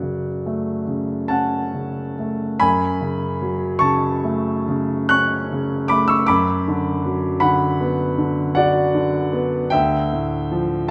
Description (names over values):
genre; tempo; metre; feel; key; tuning
classical, impressionist solo piano; 44-53 BPM (dotted quarters); 9/8; rubato; F# minor; A4 = 440 Hz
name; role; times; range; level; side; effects
warm concert grand piano; solo; 0.0-10.9 s; D2 to F#6; -20 LUFS; equal; none
room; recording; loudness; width
moderate recital hall reverb, RT60 1.6 s; none; -20 LUFS; mono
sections
0.0-2.6 A section; 2.6-10.9 A section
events
none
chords
0.0 F#m; 2.6 F#madd9; 6.3 Bm/F#; 9.7 Dmadd9